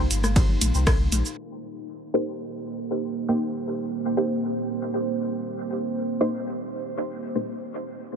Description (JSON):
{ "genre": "dub techno", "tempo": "118 BPM", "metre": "4/4", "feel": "straight", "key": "C minor", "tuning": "A4 = 440 Hz", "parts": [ { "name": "deep dark ambient pad", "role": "sustained chords", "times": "0.0-8.2 s", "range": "Bb3 to F5", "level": "-29 LUFS", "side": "right 3 dB", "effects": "chorus, built-in reverb, sidechain pumping" }, { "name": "warm sub bass", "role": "bass", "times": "0.0-1.2 s", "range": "G1 to C2", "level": "-24 LUFS", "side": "equal", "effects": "tube saturation, sidechain pumping" }, { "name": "punchy analog drum machine", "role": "drums", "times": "0.1-1.4 s", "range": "cabasa, hi-hat, ride cymbal, rim click", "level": "-27 LUFS", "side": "right 1 dB", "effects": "low-pass filter on cymbals, low-pass filter on perc, low-pass filter on hats, low-pass filter on snare, low-pass filter on room" }, { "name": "electronic toms and congas", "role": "percussion", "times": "0.2-1.2 s", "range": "none", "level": "-33 LUFS", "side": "left 3 dB", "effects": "sidechain pumping on perc, sidechain pumping on toms, dub echo" }, { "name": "electronic kick drum", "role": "drums", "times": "0.4-1.0 s", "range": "none", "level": "-21 LUFS", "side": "equal", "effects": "none" }, { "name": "filtered dub chord stab", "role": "stabs", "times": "2.1-7.7 s", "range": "Bb3 to C5", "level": "-29 LUFS", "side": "equal", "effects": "phaser, cassette tape, sidechain pumping, dub echo" } ], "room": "light reverb, digital ambience", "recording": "low-pass filter", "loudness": "-24 LUFS", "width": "side -7 dB against mid", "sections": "0.0-1.4 A section; 1.4-8.2 B section", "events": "filter sweep on synth stab 1.4-8.2; filter sweep 1.4-8.2", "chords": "0.0 Cm7", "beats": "0.36 0.87 | 1.38 1.89 2.39 2.90 | 3.41 3.92 4.43 4.94 | 5.45 5.95 6.46 6.97 | 7.48 7.99" }